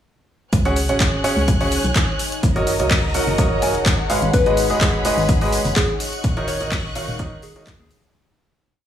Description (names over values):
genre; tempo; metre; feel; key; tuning
piano house; 126 BPM; 4/4; swing 53% on 16ths; unclear; A4 = 440 Hz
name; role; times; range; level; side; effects
warm symphonic violin section; sustained chords; 0.5-8.1 s; G#4 to F#6; -28 LUFS; equal; sidechain pumping
organ-like FM bass; bass; 0.5-7.9 s; D#1 to D#2; -25 LUFS; equal; sidechain pumping
damped 70s drum kit; drums; 0.5-8.0 s; hi-hat, shaker, snare drum; -35 LUFS; equal; none
electronic kick drum; drums; 0.5-7.8 s; none; -20 LUFS; equal; none
house drum kit; drums; 0.5-8.1 s; handclaps, hi-hat; -25 LUFS; left 1 dB; none
deep dark ambient pad; texture; 1.7-8.1 s; D#4 to F#5; -28 LUFS; left 1 dB; chorus, built-in reverb, sidechain pumping
clear grand piano; riff; 0.7-7.7 s; D#3 to G#5; -22 LUFS; right 1 dB; sidechain pumping, dub echo
soft struck synth lead; melody; 4.3-8.1 s; G#4 to C#5; -23 LUFS; left 5 dB; chorus, dub echo
tambourine; percussion; 4.3-8.1 s; none; -35 LUFS; equal; none
room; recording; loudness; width
light reverb, studio ambience; studio reverb; -16 LUFS; side -10 dB against mid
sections
0.5-8.1 drop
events
drop 0.5-8.1; fade-out 5.6-8.1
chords
0.5 C#sus4; 2.4 F#6; 4.1 G#m7; 6.0 D#m7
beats
| 0.53 1.00 1.48 1.96 | 2.43 2.91 3.38 3.86 | 4.34 4.81 5.29 5.76 | 6.24 6.72 7.19 7.67